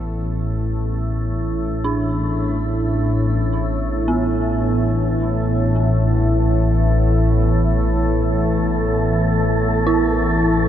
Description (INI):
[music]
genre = dark ambient drone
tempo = free time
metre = none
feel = none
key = unclear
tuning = A4 = 441 Hz
[part]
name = deep dark ambient pad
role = sustained chords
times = 0.0-10.7 s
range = B3 to E5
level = -28 LUFS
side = equal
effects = chorus, built-in reverb, shimmer reverb
[part]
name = dark detuned synth bell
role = arpeggios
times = 0.0-10.7 s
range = B3 to E4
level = -25 LUFS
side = right 2 dB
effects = chorus, phaser, tape echo, shimmer reverb
[part]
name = organ-like drone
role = drone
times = 0.0-10.7 s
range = A1 to A2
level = -18 LUFS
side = equal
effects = ensemble chorus, built-in reverb
[part]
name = wind-like tuned noise texture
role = texture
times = 8.1-10.7 s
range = A4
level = -24 LUFS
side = right 1 dB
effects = built-in reverb, shimmer reverb
[sound]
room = moderate huge ambient reverb, RT60 7.8 s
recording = none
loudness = -16 LUFS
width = side -10 dB against mid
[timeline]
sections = 0.0-10.7 A section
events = fade-in on ambient pad 0.0-10.7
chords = 0.0 Asus2